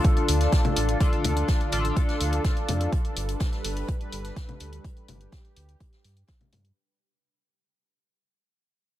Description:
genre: melodic techno.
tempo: 125 BPM.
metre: 4/4.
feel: straight.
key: unclear.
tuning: A4 = 439 Hz.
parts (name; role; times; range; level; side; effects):
lush unison pad; sustained chords; 0.0-6.7 s; D3 to B4; -32 LUFS; equal; chorus, sidechain pumping.
sync-sweep polysynth; stabs; 0.0-2.9 s; D4 to A4; -30 LUFS; left 3 dB; ensemble chorus, sidechain pumping, dub echo.
electronic hi-hat and congas; drums; 0.0-6.7 s; none; -32 LUFS; left 3 dB; none.
electronic kick drum; drums; 0.0-6.4 s; none; -24 LUFS; equal; none.
swinging big-band drum kit; drums; 0.0-6.6 s; hi-hat, snare drum; -41 LUFS; left 3 dB; high-pass filter on hats, high-pass filter on snare, high-pass filter on room.
round analog bass; bass; 0.3-6.7 s; G1 to G2; -26 LUFS; equal; sidechain pumping.
room: digital ambience.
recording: none.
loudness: -22 LUFS.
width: side -13 dB against mid.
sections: 0.0-6.8 A section.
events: fade-out 0.0-6.8.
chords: 0.0 Dm; 2.9 Gadd9.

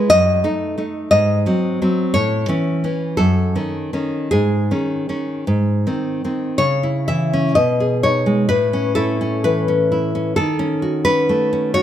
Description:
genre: romantic piece for solo classical guitar.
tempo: 50-66 BPM.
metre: 2/4.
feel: rubato.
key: unclear.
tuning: A4 = 439 Hz.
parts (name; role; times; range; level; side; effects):
nylon-string guitar; solo; 0.0-11.8 s; F#2 to E5; -16 LUFS; equal; none.
room: moderate recital hall reverb, RT60 1.6 s.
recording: none.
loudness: -16 LUFS.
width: side -11 dB against mid.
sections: 0.0-6.6 A section; 6.6-11.8 B section.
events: none.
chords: 0.1 D#dim/F#; 1.1 G#7; 2.2 A; 3.2 D#m7b5/F#; 4.3 G#sus4; 5.5 G#; 6.6 C#m; 7.6 G#m/B; 8.5 A; 10.4 D#m7b5.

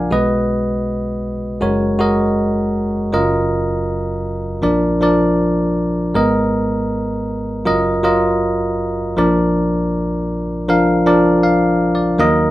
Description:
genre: folk.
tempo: 79 BPM.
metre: 4/4.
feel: straight.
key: unclear.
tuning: A4 = 440 Hz.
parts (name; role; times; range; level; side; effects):
bell-like tine electric piano; solo; 0.0-12.5 s; Gb1 to Ab5; -14 LUFS; equal; none.
room: light reverb.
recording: minimal, uncompressed stereo recording.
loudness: -14 LUFS.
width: side -15 dB against mid.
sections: 0.0-12.2 A section.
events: none.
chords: 0.1 B6; 1.6 Gbadd9; 3.1 Ebmadd9/Gb; 4.6 Bb; 6.2 Abmadd9; 7.7 Ebmadd9/Gb; 9.2 Bb.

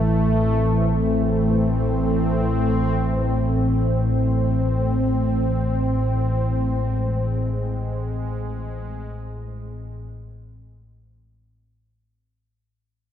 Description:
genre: dark ambient drone.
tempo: free time.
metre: none.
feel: none.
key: unclear.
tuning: A4 = 440 Hz.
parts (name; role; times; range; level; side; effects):
sweeping resonant pad; sustained chords; 0.0-12.3 s; A2 to C4; -23 LUFS; right 1 dB; chorus.
deep rumbling drone; drone; 0.0-12.5 s; A1 to A2; -23 LUFS; left 1 dB; built-in reverb.
room: wet cathedral reverb, RT60 5.2 s.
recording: none.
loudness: -19 LUFS.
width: side -9 dB against mid.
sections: 0.0-12.3 A section.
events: fade-out on analog synth pad 0.0-12.3; fade-out 6.6-12.3.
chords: 0.0 Am.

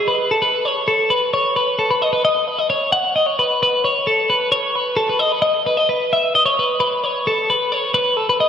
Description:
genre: rock.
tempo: 263 BPM (eighths).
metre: 7/8.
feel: straight.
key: unclear.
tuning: A4 = 441 Hz.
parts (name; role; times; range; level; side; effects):
twelve-string electric guitar; solo; 0.0-8.5 s; A4 to F#5; -15 LUFS; left 1 dB; spring reverb, diffuse ambient delay.
room: wet lush hall reverb, RT60 3.0 s.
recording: dreamy mix soaked in reverb.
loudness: -15 LUFS.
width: side -8 dB against mid.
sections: 0.4-8.5 A section.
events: none.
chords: none.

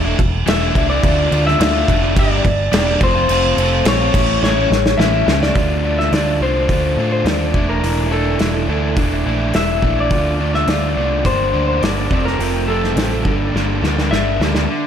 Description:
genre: indie rock.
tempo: 105 BPM.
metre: 4/4.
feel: straight.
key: D minor.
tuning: A4 = 440 Hz.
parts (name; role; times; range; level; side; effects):
overdriven electric guitar; riff; 0.0-14.9 s; F2 to G4; -20 LUFS; equal; slapback echo.
deep dub picked electric bass; bass; 0.0-14.7 s; E1 to A2; -20 LUFS; equal; none.
loose indie drum kit; drums; 0.2-14.7 s; crash cymbal, hi-hat, kick drum, snare drum; -19 LUFS; equal; none.
electric guitar through a small old amp; melody; 0.5-14.5 s; A4 to E5; -20 LUFS; left 2 dB; slapback echo.
room: moderate lush hall reverb, RT60 1.7 s, small room ambience.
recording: big arena sound.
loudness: -14 LUFS.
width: side -8 dB against mid.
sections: 0.0-5.6 A section; 5.6-14.7 B section.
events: drum fill 4.4-5.6, 13.5-14.7.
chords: 0.0 Asus4/E; 1.0 Dm; 2.2 Gm; 3.0 F; 4.1 A; 5.6 Dm7; 7.5 Asus4/E; 10.1 Dm7; 11.3 Gm; 12.1 F; 13.3 Gm.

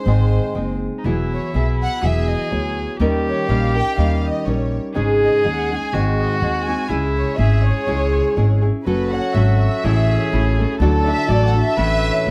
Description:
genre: mexican folk, mariachi.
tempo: 123 BPM.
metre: 2/4.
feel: swing 54% on 8ths.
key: C# minor, F# minor from 8.9 s.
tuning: A4 = 438 Hz.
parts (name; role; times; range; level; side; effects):
dark studio violin section; melody; 0.0-12.3 s; A4 to G#5; -28 LUFS; equal; none.
nylon-string guitar; accompaniment; 0.0-12.3 s; G#2 to A#4; -24 LUFS; equal; none.
upright bass; bass; 0.1-12.3 s; E1 to D#2; -21 LUFS; equal; none.
warm violin; second line; 1.0-12.3 s; D#4 to B4; -28 LUFS; equal; none.
concert harp; arpeggios; 8.9-12.3 s; A3 to F#4; -30 LUFS; equal; none.
room: light reverb.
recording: close, detailed microphones.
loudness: -18 LUFS.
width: mono.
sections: 0.0-8.9 A section; 8.9-12.3 B section.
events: none.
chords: 0.1 G#; 1.0 Eadd9; 3.0 D#7; 5.0 G#sus4; 5.9 G#; 6.9 C#m; 8.9 F#m; 9.8 A; 10.8 D.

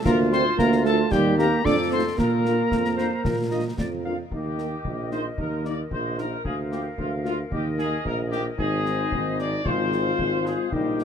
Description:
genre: military-style march for wind band.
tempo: 112 BPM.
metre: 2/4.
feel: straight.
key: Bb major, Eb major from 4.3 s.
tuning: A4 = 440 Hz.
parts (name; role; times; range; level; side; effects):
clear woodwind section; second line; 0.0-11.0 s; F4 to F5; -32 LUFS; left 3 dB; none.
mellow euphonium; second line; 0.0-3.7 s; G3 to D4; -23 LUFS; right 4 dB; none.
clear tuba; bass; 0.0-11.0 s; Ab1 to Bb2; -26 LUFS; right 2 dB; none.
warm trumpet section; melody; 0.1-11.0 s; F4 to D5; -31 LUFS; left 2 dB; none.
bright piccolo; second line; 0.1-3.7 s; G5 to D6; -29 LUFS; left 6 dB; none.
concert snare drum, clash cymbals and concert bass drum; drums; 0.1-11.0 s; none; -31 LUFS; left 1 dB; none.
mellow French horn section; accompaniment; 0.3-11.0 s; G3 to G4; -29 LUFS; left 6 dB; none.
room: light reverb.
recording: none.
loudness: -22 LUFS.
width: side -8 dB against mid.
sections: 0.0-4.3 A section; 4.3-11.0 B section.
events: none.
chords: 0.1 Bb/D; 1.1 Cm7/Eb; 1.6 F7; 2.2 Bb; 4.3 Eb; 6.4 Bb/D; 7.5 Eb5; 8.6 Ab; 9.7 Fm/Ab.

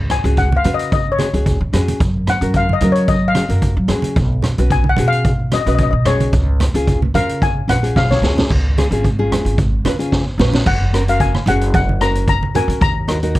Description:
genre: calypso.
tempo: 111 BPM.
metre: 4/4.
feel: swing 54% on 16ths.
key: F# major.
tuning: A4 = 440 Hz.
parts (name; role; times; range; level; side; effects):
upright bass; bass; 0.0-13.4 s; F#1 to F#3; -18 LUFS; equal; none.
steel pan; melody; 0.1-13.4 s; C#5 to A#5; -19 LUFS; left 4 dB; none.
street-band drum kit; drums; 0.1-13.4 s; crash cymbal, hi-hat, kick drum, rim click, snare drum; -19 LUFS; equal; none.
congas; percussion; 0.1-12.7 s; none; -22 LUFS; right 3 dB; none.
nylon-string guitar; accompaniment; 0.2-13.4 s; C#4 to C#5; -21 LUFS; left 1 dB; none.
room: little or no reverb.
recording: none.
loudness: -13 LUFS.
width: side -16 dB against mid.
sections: 0.0-8.5 A section; 8.5-10.7 B section; 10.7-13.4 C section.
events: steel pan solo 0.0-8.5; drum fill 8.0-8.5, 10.1-10.7.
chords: 0.0 C#sus4; 2.0 F#add9; 4.2 Bsus2; 6.3 C#; 10.7 F#add9; 12.8 D#m.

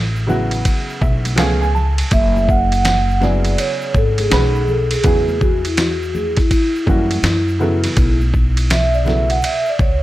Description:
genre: hip hop, jazz-hop.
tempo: 82 BPM.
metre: 4/4.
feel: swing 65% on 16ths.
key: unclear.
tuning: A4 = 440 Hz.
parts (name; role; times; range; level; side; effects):
upright bass; bass; 0.0-10.0 s; F#1 to F#2; -18 LUFS; equal; none.
egg shaker and congas; percussion; 0.2-10.0 s; none; -32 LUFS; left 2 dB; none.
dark upright piano; accompaniment; 0.3-9.4 s; C#3 to A5; -22 LUFS; right 1 dB; none.
dusty soul sampler-style drum kit; drums; 0.5-10.0 s; hi-hat, kick drum, ride cymbal, snare drum; -19 LUFS; equal; overdrive.
vibraphone with soft mallets; melody; 2.1-10.0 s; E4 to F#5; -19 LUFS; right 1 dB; analog delay.
room: small room ambience.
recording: none.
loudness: -14 LUFS.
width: side -16 dB against mid.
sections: 0.0-10.0 A section.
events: vibraphone solo 0.0-10.0; upright piano fill 0.7-2.1.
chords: 0.0 Aadd9; 1.4 C#7b13; 2.1 F#sus2; 4.3 Badd9; 5.0 E69; 7.2 F#5; 8.0 B5.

